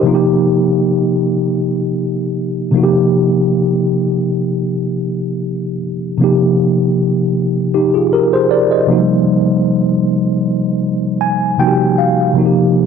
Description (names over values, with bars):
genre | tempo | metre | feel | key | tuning
R&B | 78 BPM | 4/4 | swing 54% on 16ths | unclear | A4 = 440 Hz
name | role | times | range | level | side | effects
mellow tine electric piano | solo | 0.0-12.9 s | C3 to Ab5 | -12 LUFS | equal | medium stereo tremolo
room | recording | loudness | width
light reverb | none | -12 LUFS | side -6 dB against mid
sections
0.0-6.2 A section; 6.2-12.9 A section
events
tine electric piano fill 10.8-12.4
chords
0.0 Ebadd9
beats
| 0.04 0.81 1.58 2.35 | 3.12 3.89 4.66 5.43 | 6.20 6.97 7.74 8.51 | 9.27 10.04 10.81 11.58 | 12.35